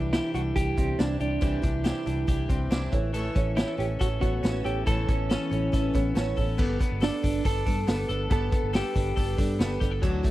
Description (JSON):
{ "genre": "jangly indie pop", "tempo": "140 BPM", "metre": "4/4", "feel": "straight", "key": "unclear", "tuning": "A4 = 440 Hz", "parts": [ { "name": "picked twelve-string acoustic guitar", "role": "accompaniment", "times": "0.0-10.3 s", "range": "C3 to C#5", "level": "-34 LUFS", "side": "right 5 dB", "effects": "none" }, { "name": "clean electric guitar", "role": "arpeggios", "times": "0.0-10.3 s", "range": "E3 to A4", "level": "-32 LUFS", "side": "left 3 dB", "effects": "spring reverb" }, { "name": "vintage muted fingered electric bass", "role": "bass", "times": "0.0-10.2 s", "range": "G1 to G2", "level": "-30 LUFS", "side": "equal", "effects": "none" }, { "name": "clean electric guitar", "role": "melody", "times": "0.1-9.8 s", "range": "C#4 to A4", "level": "-31 LUFS", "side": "right 1 dB", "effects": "wide subtle chorus" }, { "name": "vintage drum kit", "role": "drums", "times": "0.1-10.3 s", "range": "crash cymbal, hi-hat, kick drum, snare drum", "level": "-27 LUFS", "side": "equal", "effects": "none" } ], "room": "studio reverb", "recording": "dry, close 1970s-style studio recording, lossy compression artefacts", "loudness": "-24 LUFS", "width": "side -15 dB against mid", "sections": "0.0-6.6 A section; 6.6-10.3 B section", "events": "none", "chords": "0.0 Cadd9; 2.9 Aadd9; 6.6 Gadd9" }